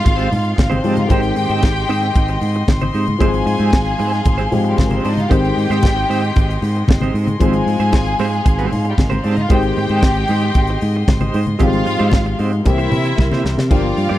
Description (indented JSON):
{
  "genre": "disco",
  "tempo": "114 BPM",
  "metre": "4/4",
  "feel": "straight",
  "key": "F minor",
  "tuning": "A4 = 440 Hz",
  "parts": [
    { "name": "clear symphonic string section", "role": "second line", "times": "0.0-14.2 s", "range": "G3 to Ab5", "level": "-22 LUFS", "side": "equal", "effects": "slapback echo" },
    { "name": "semi-hollow electric guitar", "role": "accompaniment", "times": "0.0-14.2 s", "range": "Ab3 to D5", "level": "-24 LUFS", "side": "right 6 dB", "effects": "tremolo" },
    { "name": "warm baby grand piano", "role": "accompaniment", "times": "0.0-14.2 s", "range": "Eb3 to Ab4", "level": "-22 LUFS", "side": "left 3 dB", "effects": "none" },
    { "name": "clear chamber string section", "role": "sustained chords", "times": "0.0-14.2 s", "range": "Ab3 to D6", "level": "-27 LUFS", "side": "left 2 dB", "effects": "none" },
    { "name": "fingered electric bass", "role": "bass", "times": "0.1-14.2 s", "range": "G1 to C3", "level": "-19 LUFS", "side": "equal", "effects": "none" },
    { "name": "tight funk drum kit", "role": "drums", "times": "0.1-14.1 s", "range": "crash cymbal, hi-hat, kick drum, snare drum", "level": "-15 LUFS", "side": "equal", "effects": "none" },
    { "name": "congas", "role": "percussion", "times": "0.1-13.8 s", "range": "none", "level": "-23 LUFS", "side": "left 2 dB", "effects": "none" }
  ],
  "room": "small room ambience",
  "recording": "dry, close 1970s-style studio recording",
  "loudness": "-14 LUFS",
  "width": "side -14 dB against mid",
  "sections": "0.0-13.7 A section",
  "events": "drum fill 13.2-13.7",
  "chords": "0.0 Fmadd9/Ab; 1.1 Abmaj7; 3.2 Fmadd9/Ab; 5.3 Abmaj7; 7.4 Fmadd9/Ab; 9.5 Abmaj7; 11.6 Fmadd9/Ab; 12.7 C7",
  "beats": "0.06 0.59 | 1.11 1.63 2.16 2.68 | 3.21 3.73 4.25 4.78 | 5.30 5.83 6.35 6.88 | 7.40 7.93 8.45 8.98 | 9.50 10.03 10.55 11.08 | 11.61 12.13 12.66 13.18 | 13.71"
}